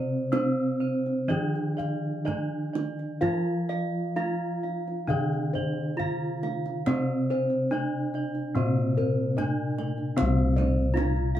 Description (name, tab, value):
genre	Javanese gamelan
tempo	62-76 BPM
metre	4/4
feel	straight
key	unclear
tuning	A4 = 441 Hz
part	gamelan-type bronze metallophone	melody	0.0-11.4 s	C4 to F4-20c	-30 LUFS	right 1 dB	none
part	gamelan-type bronze metallophone	accompaniment	0.0-11.4 s	C3 to F3-20c	-31 LUFS	left 2 dB	none
part	gamelan-type bossed gongs	arpeggios	0.0-11.4 s	Bb4-40c to F5-20c	-36 LUFS	left 6 dB	none
part	gamelan-type bronze metallophone	arpeggios	0.0-11.4 s	C5 to F5-20c	-34 LUFS	right 4 dB	none
part	gamelan-type bossed gongs	bass	0.0-11.4 s	C2 to F4-20c	-31 LUFS	left 1 dB	none
part	kendang	percussion	0.3-11.4 s	none	-35 LUFS	right 5 dB	none
room	moderate studio ambience, RT60 0.5 s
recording	band playing live in one room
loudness	-25 LUFS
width	side -12 dB against mid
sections	0.0-10.2 A section; 10.2-11.4 B section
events	none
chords	none